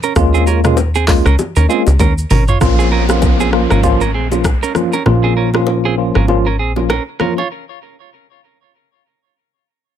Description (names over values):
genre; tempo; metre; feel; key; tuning
afrobeats; 98 BPM; 4/4; swing 58% on 16ths; Bb minor; A4 = 440 Hz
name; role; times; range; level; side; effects
clean electric guitar; riff; 0.0-7.5 s; C4 to Db5; -20 LUFS; right 7 dB; ping-pong delay
afro-pop drum kit; drums; 0.0-7.4 s; handclaps, hi-hat, kick drum, rim click, shaker, toms; -17 LUFS; equal; overdrive
tine electric piano; accompaniment; 0.2-7.4 s; F3 to F4; -16 LUFS; left 1 dB; fast stereo tremolo
plucky analog bass; bass; 0.2-7.0 s; Ab1 to Eb2; -14 LUFS; equal; none
congas and bongos; percussion; 0.2-7.5 s; none; -23 LUFS; left 4 dB; none
downlifter; sound effects; 2.6-7.5 s; none; -25 LUFS; equal; none
room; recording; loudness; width
little or no reverb; none; -11 LUFS; side -10 dB against mid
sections
0.0-2.6 A section; 2.6-7.5 B section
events
drum fill 2.0-2.6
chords
0.0 Eb7sus4; 2.6 Bbm